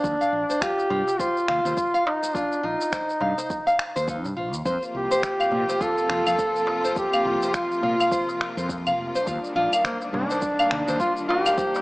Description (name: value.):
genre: organic downtempo.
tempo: 104 BPM.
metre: 4/4.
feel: swing 59% on 16ths.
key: F mixolydian.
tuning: A4 = 439 Hz.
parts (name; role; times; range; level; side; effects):
warm duduk; melody; 0.0-11.8 s; Bb3 to A4; -24 LUFS; equal; tape echo.
nylon-string guitar; arpeggios; 0.0-11.7 s; Eb4 to F5; -26 LUFS; equal; tape echo.
mellow fretless electric bass; bass; 0.0-11.0 s; F1 to Bb2; -31 LUFS; equal; none.
electronic kick drum; drums; 0.0-11.7 s; none; -34 LUFS; equal; studio reverb.
electronic shaker, finger snaps and claves; drums; 0.0-11.8 s; none; -31 LUFS; equal; studio reverb.
darbuka; percussion; 0.8-11.8 s; none; -36 LUFS; right 1 dB; none.
rich studio string section; sustained chords; 4.6-11.8 s; C3 to F4; -31 LUFS; left 1 dB; sidechain pumping.
room: moderate echo chamber reverb, RT60 1.5 s, small room ambience.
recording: small speaker sound.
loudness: -21 LUFS.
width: side -22 dB against mid.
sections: 0.0-11.8 A section.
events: none.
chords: 0.0 N.C.; 4.7 Fsus4; 9.3 Ebmaj7.